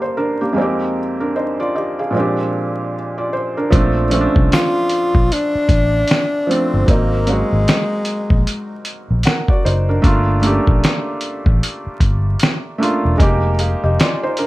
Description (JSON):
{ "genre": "lo-fi hip hop", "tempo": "76 BPM", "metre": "4/4", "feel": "swing 61% on 16ths", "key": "Bb major", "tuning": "A4 = 439 Hz", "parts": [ { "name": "felt-muted upright piano", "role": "accompaniment", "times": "0.0-14.5 s", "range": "F2 to Gb5", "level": "-19 LUFS", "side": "right 1 dB", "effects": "cassette tape" }, { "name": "vintage muted fingered electric bass", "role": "bass", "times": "3.7-14.0 s", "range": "E1 to C2", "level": "-17 LUFS", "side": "equal", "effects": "none" }, { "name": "lo-fi sampler-style drum kit", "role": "drums", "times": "3.7-14.5 s", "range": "hi-hat, kick drum, snare drum", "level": "-15 LUFS", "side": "equal", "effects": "none" }, { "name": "breathy tenor saxophone", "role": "melody", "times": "4.5-8.9 s", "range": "Ab3 to F4", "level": "-18 LUFS", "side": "left 1 dB", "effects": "plate reverb" } ], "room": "light reverb", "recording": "vinyl crackle", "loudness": "-14 LUFS", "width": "side -18 dB against mid", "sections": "0.0-3.7 A section; 3.7-14.5 B section", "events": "none", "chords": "0.0 Gm9; 0.6 Fm11; 2.1 Bb13; 3.7 Bbmaj9; 6.9 Ab9; 10.0 Gm9; 13.2 Fm11", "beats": "| 0.57 1.35 2.15 2.93 | 3.72 4.51 5.30 6.09 | 6.88 7.67 8.46 9.25 | 10.04 10.83 11.62 12.41 | 13.20 13.99" }